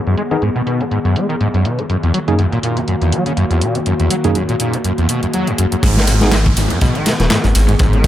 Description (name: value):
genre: breakbeat, breaks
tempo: 122 BPM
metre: 4/4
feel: swing 56% on 16ths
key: G# minor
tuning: A4 = 440 Hz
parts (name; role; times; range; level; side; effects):
- warbly tape-like pad; sustained chords; 0.0-8.1 s; D#3 to G#4; -22 LUFS; left 1 dB; chorus, built-in reverb, sidechain pumping
- overdriven acid bass; riff; 0.1-8.1 s; G#1 to G#3; -16 LUFS; equal; ensemble chorus, analog delay
- garage drum kit; drums; 0.1-8.1 s; handclaps, hi-hat, ride cymbal; -24 LUFS; equal; analog delay
- tine electric piano; stabs; 0.3-6.3 s; F#2 to G#4; -20 LUFS; right 2 dB; medium stereo tremolo, analog delay
- swell and downlifter; sound effects; 5.1-8.1 s; none; -26 LUFS; right 2 dB; none
- dark detuned saw bass; bass; 5.8-8.1 s; D#1 to G#1; -15 LUFS; equal; none
- crunchy breakbeat drum kit; drums; 5.8-8.1 s; hi-hat, kick drum, snare drum; -16 LUFS; equal; analog delay
room: light reverb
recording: echo-heavy mix, low-pass filter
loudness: -13 LUFS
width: side -12 dB against mid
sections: 0.0-5.8 A section; 5.8-8.1 B section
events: filter sweep on acid bass 0.0-5.8; filter sweep 0.0-5.8; swell 5.1-5.8; drop 5.8-8.1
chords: 0.0 G#m; 1.9 F#6; 5.8 G#m